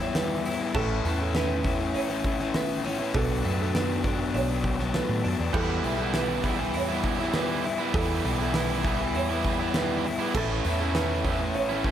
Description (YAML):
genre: post-rock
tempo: 100 BPM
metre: 4/4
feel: straight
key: E dorian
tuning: A4 = 440 Hz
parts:
  - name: pedal steel guitar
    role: sustained chords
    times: 0.0-11.9 s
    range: C#4 to A5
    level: -39 LUFS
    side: right 4 dB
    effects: none
  - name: felt-muted upright piano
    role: arpeggios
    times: 0.0-11.9 s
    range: A4 to C#5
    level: -34 LUFS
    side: right 7 dB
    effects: digital delay
  - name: twelve-string electric guitar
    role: arpeggios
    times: 0.0-11.9 s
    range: E2 to E4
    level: -36 LUFS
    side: equal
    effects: digital delay
  - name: raw garage guitar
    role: riff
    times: 0.0-11.9 s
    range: A2 to E4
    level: -29 LUFS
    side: left 5 dB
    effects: overdrive
  - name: hollow-body short-scale fingered electric bass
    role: bass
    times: 0.0-11.9 s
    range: A1 to A2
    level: -32 LUFS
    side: equal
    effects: none
  - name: huge arena drum kit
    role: drums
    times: 0.0-11.9 s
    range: crash cymbal, hi-hat, kick drum, snare drum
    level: -31 LUFS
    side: equal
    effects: none
  - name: tight distorted guitar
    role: riff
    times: 5.5-11.9 s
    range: A2 to E4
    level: -31 LUFS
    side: right 11 dB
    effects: distortion
room: light reverb, small room ambience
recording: none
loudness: -24 LUFS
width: side -10 dB against mid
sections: 0.0-11.9 A section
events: none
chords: 0.0 Em; 0.8 Aadd9; 3.2 Bm7; 5.6 Emadd9; 10.4 Aadd9